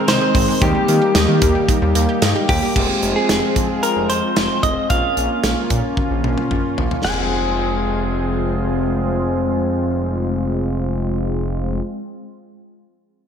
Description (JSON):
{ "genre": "synth-pop", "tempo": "112 BPM", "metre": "4/4", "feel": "straight", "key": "F minor", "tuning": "A4 = 442 Hz", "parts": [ { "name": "analog synth brass", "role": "accompaniment", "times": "0.0-11.8 s", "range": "G3 to C5", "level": "-23 LUFS", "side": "left 2 dB", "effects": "chorus, low-pass filter" }, { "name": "warm analog pad", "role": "sustained chords", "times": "0.0-11.8 s", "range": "Eb3 to Ab4", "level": "-24 LUFS", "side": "equal", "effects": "chorus, low-pass filter" }, { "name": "analog pluck", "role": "arpeggios", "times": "0.0-2.7 s", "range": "Eb3 to Eb5", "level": "-25 LUFS", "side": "right 3 dB", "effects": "chorus, ping-pong delay" }, { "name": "direct-recorded clean electric guitar", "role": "melody", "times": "0.1-11.8 s", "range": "G4 to Ab5", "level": "-21 LUFS", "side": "equal", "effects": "lush chorus, low-pass filter, ping-pong delay" }, { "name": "smooth synth bass", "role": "bass", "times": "0.1-11.8 s", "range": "F1 to Eb3", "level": "-22 LUFS", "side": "equal", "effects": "none" }, { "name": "modern studio drum kit", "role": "drums", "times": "0.1-7.2 s", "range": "crash cymbal, hi-hat, kick drum, snare drum, toms", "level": "-20 LUFS", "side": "equal", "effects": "none" } ], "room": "wet lush hall reverb, RT60 2.0 s, small room ambience", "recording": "dreamy mix soaked in reverb", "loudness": "-16 LUFS", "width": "side -7 dB against mid", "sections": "0.0-2.8 A section; 2.8-7.0 B section; 7.0-11.3 C section", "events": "filter sweep 2.8-7.0; drum fill 6.0-7.0", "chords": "0.0 Ab; 0.6 Eb; 2.8 Fm; 4.9 Bbm; 7.0 Fm" }